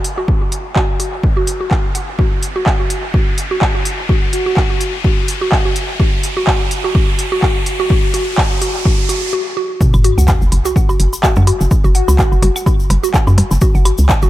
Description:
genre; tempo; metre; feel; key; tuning
minimal techno; 126 BPM; 4/4; swing 56% on 16ths; unclear; A4 = 440 Hz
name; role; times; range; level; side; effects
minimal click drum kit; drums; 0.0-14.2 s; handclaps, hi-hat; -22 LUFS; equal; high-pass filter on hats, high-pass filter on snare, dub echo
riser and sub drop; sound effects; 0.0-11.7 s; none; -23 LUFS; equal; none
mallet-like synth pluck; riff; 0.2-14.3 s; F#4 to F#5; -21 LUFS; equal; chorus, vintage 12-bit sampler grit, sidechain pumping, dub echo
electronic kick drum; drums; 0.3-14.2 s; none; -15 LUFS; equal; none
airy dreamy lead; melody; 4.3-4.8, 11.9-12.4 s; F#4; -24 LUFS; equal; chorus, dub echo
cabasa; percussion; 9.8-14.3 s; none; -28 LUFS; left 4 dB; none
hollow knocking FM bass; bass; 9.9-14.3 s; F#1 to F#2; -12 LUFS; equal; tube saturation, sidechain pumping
claves, woodblock and percussion blips; percussion; 9.9-14.2 s; none; -23 LUFS; equal; dub echo
room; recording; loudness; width
light reverb, digital ambience; echo-heavy mix; -12 LUFS; side -15 dB against mid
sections
0.0-9.8 A section; 9.8-14.3 B section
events
build-up 0.0-9.8; riser 0.0-9.3; filter sweep on digital synth lead 0.0-9.8; break 9.3-9.8; drop 9.8-14.3; impact 9.8-11.7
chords
none

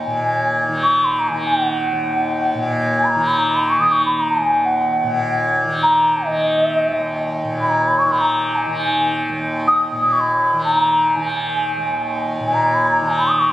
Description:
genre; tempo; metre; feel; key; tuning
indian classical, Hindustani; free time; none; none; Eb raga bhairavi; A4 = 443 Hz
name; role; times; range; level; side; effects
mellow bansuri; melody; 0.0-13.5 s; Eb5 to Eb6; -17 LUFS; equal; none
tanpura; drone; 0.0-13.5 s; Eb2 to Eb3; -20 LUFS; equal; none
room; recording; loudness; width
wet recital hall reverb, RT60 1.8 s; recorded on a phone in the room, club reverb; -15 LUFS; side -14 dB against mid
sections
0.0-7.4 A section; 7.4-13.5 A section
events
none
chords
none

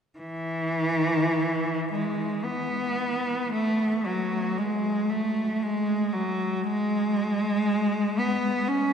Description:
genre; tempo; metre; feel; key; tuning
classical, free, expressive piece for unaccompanied cello; 51-60 BPM; 3/4; rubato; unclear; A4 = 440 Hz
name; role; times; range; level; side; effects
rich cello; solo; 0.2-8.9 s; E3 to C#4; -24 LUFS; equal; none
room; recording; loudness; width
wet cathedral reverb, RT60 5.8 s; recorded in a church or concert hall; -24 LUFS; side -7 dB against mid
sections
0.2-8.9 A section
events
none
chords
none

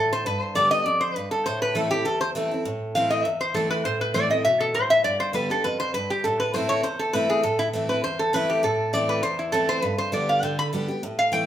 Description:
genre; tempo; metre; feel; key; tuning
bluegrass; 201 BPM; 4/4; straight; A minor; A4 = 440 Hz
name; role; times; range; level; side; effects
lap resonator guitar; melody; 0.0-11.5 s; E4 to B5; -22 LUFS; equal; none
picked steel-string acoustic guitar; accompaniment; 0.0-11.5 s; E2 to G4; -26 LUFS; equal; none
room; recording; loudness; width
wet large studio reverb, RT60 0.9 s; band playing live in one room; -21 LUFS; side -11 dB against mid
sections
0.0-2.6 A section; 2.6-11.5 B section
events
resonator guitar played with a steel bar solo 2.6-11.5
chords
0.3 G; 1.5 Am; 5.0 G; 6.2 Am; 9.8 G

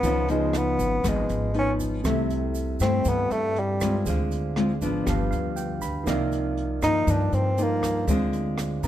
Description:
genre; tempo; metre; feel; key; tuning
bossa nova; 119 BPM; 4/4; straight; C minor; A4 = 439 Hz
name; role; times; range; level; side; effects
warm bassoon; melody; 0.0-8.1 s; G3 to Eb4; -25 LUFS; equal; none
nylon-string guitar; accompaniment; 0.0-8.9 s; G2 to F4; -27 LUFS; left 2 dB; none
tine electric piano; accompaniment; 0.0-8.9 s; C4 to B5; -33 LUFS; right 5 dB; overdrive
upright bass; bass; 0.0-8.9 s; G1 to Ab2; -28 LUFS; equal; none
jazz brush drum kit; drums; 0.0-8.9 s; hi-hat, kick drum, rim click; -32 LUFS; equal; none
egg shaker; percussion; 0.0-8.9 s; none; -42 LUFS; right 7 dB; none
room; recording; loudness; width
moderate large studio reverb, RT60 1.3 s; dark, warm production; -22 LUFS; side -12 dB against mid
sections
0.0-8.9 A section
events
bassoon solo 0.0-8.9; tine electric piano fill 5.1-6.1, 8.6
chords
0.0 Db9; 2.0 C6; 4.1 Dm7b5; 5.1 G7; 6.1 Cm11; 8.1 Dm7b5

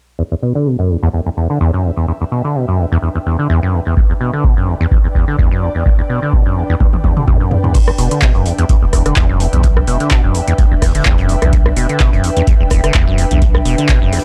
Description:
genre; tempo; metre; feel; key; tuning
acid house; 127 BPM; 4/4; swing 55% on 16ths; E minor; A4 = 439 Hz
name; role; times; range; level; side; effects
liquid acid bass; riff; 0.2-14.2 s; E2 to D3; -18 LUFS; equal; chorus, tube saturation, sidechain pumping
ethereal airy pad; texture; 1.4-14.2 s; D4 to G5; -25 LUFS; equal; ensemble chorus, built-in reverb, sidechain pumping
electronic kick drum; drums; 4.0-14.0 s; none; -15 LUFS; equal; none
electro analog drum machine; drums; 6.8-14.2 s; crash cymbal, handclaps, hi-hat, rim click, toms; -22 LUFS; equal; none
warm soul drum kit; drums; 7.7-14.2 s; hi-hat, snare drum; -34 LUFS; equal; none
warm sub bass; bass; 8.0-14.1 s; E1 to B1; -19 LUFS; equal; sidechain pumping
room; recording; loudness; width
light reverb; dark, warm production, faint mains hum; -14 LUFS; mono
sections
0.2-7.7 A section; 7.7-14.2 B section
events
fade-in on ambient pad 0.2-7.7; filter sweep on acid bass 0.2-7.7, 7.7-14.2; drum fill 6.8-7.7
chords
0.2 Em7

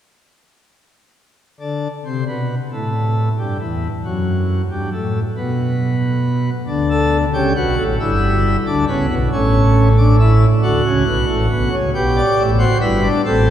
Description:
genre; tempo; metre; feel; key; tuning
classical, baroque-style 4-part fugue for pipe organ; 46 BPM (dotted quarters); 6/8; straight; G major; A4 = 438 Hz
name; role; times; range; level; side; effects
pipe organ, plenum; solo; 1.6-13.5 s; G1 to D5; -14 LUFS; equal; none
room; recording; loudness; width
wet cathedral reverb, RT60 5.7 s; heard from further back in the room; -14 LUFS; side -10 dB against mid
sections
1.4-13.5 A section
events
none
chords
1.4 N.C.; 6.7 D; 8.0 Em7/G; 9.3 A; 10.6 D; 11.9 G

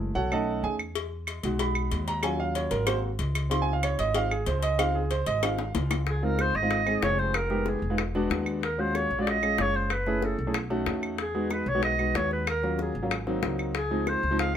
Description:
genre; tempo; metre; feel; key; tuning
Afro-Cuban jazz; 187 BPM; 4/4; straight; Db major; A4 = 444 Hz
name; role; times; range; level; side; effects
clear grand piano; accompaniment; 0.0-14.6 s; F3 to C6; -29 LUFS; right 2 dB; none
upright bass; bass; 0.0-14.6 s; Fb1 to Fb2; -31 LUFS; equal; none
claves; percussion; 0.3-14.2 s; none; -35 LUFS; right 2 dB; none
cowbell and bongos; percussion; 1.0-14.6 s; none; -33 LUFS; left 8 dB; none
clear clarinet; melody; 6.1-14.5 s; Ab4 to F5; -28 LUFS; equal; none
room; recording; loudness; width
light reverb; none; -25 LUFS; side -9 dB against mid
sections
0.0-6.1 A section; 6.1-14.6 B section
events
grand piano solo 0.0-6.1; drum fill 5.4-6.1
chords
0.3 Cb7; 1.0 Emaj7; 2.2 Ebm7; 2.9 Ab7; 3.5 Dbmaj7; 7.3 Fm7b5; 8.0 E9; 8.6 Ebm11; 9.9 Gbm7; 10.6 Cb7; 11.2 Emaj7; 12.5 Ebm7; 13.1 Ab7; 13.8 Dbmaj7

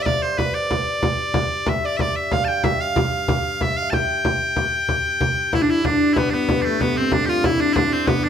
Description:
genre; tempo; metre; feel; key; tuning
medieval dance; 125 BPM (dotted quarters); 6/8; straight; G mixolydian; A4 = 440 Hz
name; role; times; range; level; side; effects
loud bright bagpipes; melody; 0.0-8.3 s; A3 to A5; -22 LUFS; equal; none
concert harp; second line; 0.0-8.3 s; A3 to G5; -25 LUFS; right 1 dB; none
rich viola da gamba; drone; 0.0-8.3 s; G2; -33 LUFS; right 2 dB; none
frame drum; percussion; 0.1-8.3 s; none; -23 LUFS; equal; none
breathy mellow tenor recorder; second line; 5.5-8.3 s; C4 to B4; -23 LUFS; left 2 dB; none
room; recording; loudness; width
wet small room reverb, RT60 0.5 s; band playing live in one room; -18 LUFS; side -8 dB against mid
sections
0.0-4.9 A section; 4.9-8.3 A section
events
none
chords
none

